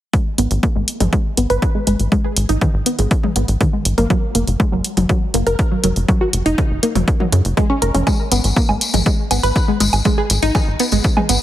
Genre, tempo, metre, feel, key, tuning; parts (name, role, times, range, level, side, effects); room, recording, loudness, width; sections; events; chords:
melodic techno; 121 BPM; 4/4; straight; A4 = 440 Hz
wide unison pluck; arpeggios; 0.1-11.4 s; C#3 to B4; -20 LUFS; equal; sidechain pumping, ping-pong delay
electronic kick drum; drums; 0.1-11.1 s; -17 LUFS; equal; overdrive
punchy analog drum machine; drums; 0.1-11.4 s; hi-hat, toms, woodblock; -22 LUFS; right 1 dB; overdrive
tight sequencer bass; bass; 0.4-11.4 s; F#1 to F#2; -18 LUFS; equal; sidechain pumping
tambourine; percussion; 8.1-11.4 s; -23 LUFS; left 3 dB
light reverb, digital ambience; heavily compressed radio sound; -14 LUFS; side -13 dB against mid
0.1-11.4 A section
filter sweep on synth arpeggio sound 0.1-11.4
0.1 N.C.; 4.1 F#5; 8.1 N.C.